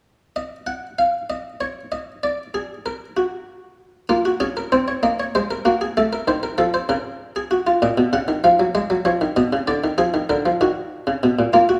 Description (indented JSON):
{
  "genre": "classical, baroque-style two-part invention for harpsichord",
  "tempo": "64 BPM (dotted quarters)",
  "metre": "6/8",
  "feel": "straight",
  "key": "Eb minor",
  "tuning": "A4 = 438 Hz",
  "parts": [
    { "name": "buff-stop harpsichord", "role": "solo", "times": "0.4-11.8 s", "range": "Bb2 to Gb5", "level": "-20 LUFS", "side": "equal", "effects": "none" }
  ],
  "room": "wet recital hall reverb, RT60 1.6 s",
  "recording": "small room ambience",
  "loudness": "-21 LUFS",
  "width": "mono",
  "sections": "0.4-11.8 A section",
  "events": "none",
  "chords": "0.4 N.C.; 4.1 Bbm; 5.0 Ebm; 6.0 F7; 6.9 Bbm/Db; 7.8 Ebm/Bb; 8.8 Abm; 9.7 Bb7/D; 10.6 Ebm"
}